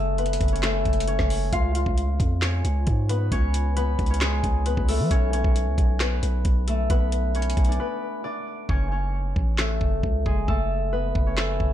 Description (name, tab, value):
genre	hip hop, trap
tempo	134 BPM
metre	4/4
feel	half-time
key	F# harmonic minor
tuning	A4 = 439 Hz
part	concert harp	melody	0.0-11.7 s	G#3 to E#5	-27 LUFS	left 2 dB	ping-pong delay
part	long sustained 808-style bass	bass	0.0-11.7 s	F#1 to E#3	-24 LUFS	equal	none
part	trap drum kit	drums	0.2-11.7 s	handclaps, hi-hat, kick drum, rim click, snare drum	-24 LUFS	equal	none
room	little or no reverb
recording	none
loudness	-21 LUFS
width	side -11 dB against mid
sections	0.0-8.7 A section; 8.7-11.7 B section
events	break 7.8-8.7; hi-hats muted 8.7-11.7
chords	0.0 F#madd9; 1.5 C#; 5.1 Bmadd9; 8.7 F#madd9